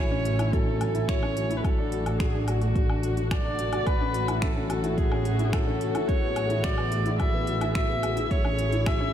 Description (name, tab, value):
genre	piano and strings electronica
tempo	108 BPM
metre	4/4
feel	straight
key	A major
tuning	A4 = 442 Hz
part	warm viola	melody	0.0-9.1 s	F#4 to E5	-30 LUFS	equal	diffuse ambient delay
part	dark studio string section	sustained chords	0.0-9.1 s	A3 to G#5	-34 LUFS	equal	sidechain pumping
part	felt-muted upright piano	riff	0.0-9.1 s	F#3 to F#4	-31 LUFS	left 1 dB	diffuse ambient delay
part	warm studio double bass section	bass	0.0-9.1 s	A1	-29 LUFS	equal	sidechain pumping
part	deep house drum kit	drums	0.3-9.0 s	finger snaps, hi-hat, woodblock	-38 LUFS	left 2 dB	studio reverb
part	electronic kick drum	drums	0.5-9.0 s	none	-26 LUFS	equal	studio reverb
room	moderate lush hall reverb, RT60 2.0 s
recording	dreamy mix soaked in reverb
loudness	-23 LUFS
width	side -10 dB against mid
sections	0.0-9.1 A section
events	none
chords	0.0 F#m7/A; 1.6 D/A; 3.9 A6; 6.1 Eadd9/A; 8.3 F#m7/A